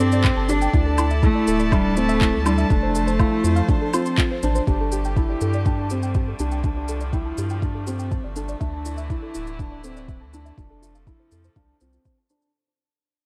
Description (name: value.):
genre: piano and strings electronica.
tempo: 122 BPM.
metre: 4/4.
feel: straight.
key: unclear.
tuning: A4 = 439 Hz.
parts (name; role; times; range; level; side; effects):
dark cello; melody; 0.0-4.2 s; G3 to D4; -26 LUFS; equal; delay.
clear string quartet; sustained chords; 0.0-12.5 s; C3 to A5; -34 LUFS; equal; sidechain pumping.
soft round pluck; arpeggios; 0.0-12.5 s; E4 to C6; -33 LUFS; equal; chorus, cassette tape, sidechain pumping, delay.
felt-muted upright piano; riff; 0.0-12.5 s; C4 to E4; -29 LUFS; equal; delay.
round analog bass; bass; 0.0-12.0 s; D1 to G2; -27 LUFS; equal; sidechain pumping.
electronic shaker, handclaps and woodblock; drums; 0.0-12.5 s; none; -31 LUFS; equal; overdrive.
electronic kick drum; drums; 0.2-12.2 s; none; -24 LUFS; equal; overdrive.
room: light reverb, studio reverb.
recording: none.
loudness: -21 LUFS.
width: mono.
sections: 0.0-4.7 A section; 4.7-12.5 B section.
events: drop 0.0-4.7; fade-out 4.7-12.5; filter sweep on synth arpeggio sound 4.7-12.5.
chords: 0.0 Gsus2; 0.7 Dsus2; 2.7 F; 4.7 Gsus2; 8.6 Dsus2; 10.6 F.